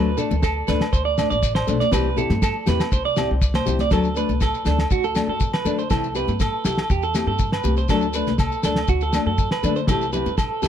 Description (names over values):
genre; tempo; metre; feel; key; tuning
highlife guitar band; 121 BPM; 4/4; straight; D mixolydian; A4 = 440 Hz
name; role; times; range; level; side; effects
nylon-string guitar; accompaniment; 0.0-10.7 s; E3 to A4; -25 LUFS; left 5 dB; none
clean electric guitar; arpeggios; 0.0-10.7 s; F#4 to D5; -24 LUFS; right 6 dB; tremolo, tape echo
upright bass; bass; 0.0-10.7 s; A1 to D3; -25 LUFS; equal; none
shekere; percussion; 0.2-10.7 s; none; -32 LUFS; left 8 dB; none
congas; percussion; 0.3-10.7 s; none; -30 LUFS; left 2 dB; none
cloth-damped thuddy drum kit; drums; 0.4-10.7 s; kick drum, snare drum; -23 LUFS; equal; none
agogo bells; percussion; 0.4-10.5 s; none; -33 LUFS; left 4 dB; none
room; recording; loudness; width
light reverb; none; -18 LUFS; side -9 dB against mid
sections
0.0-3.9 A section; 3.9-10.7 B section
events
none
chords
0.0 D5; 1.9 C; 3.9 D; 5.9 C; 7.9 D; 9.9 C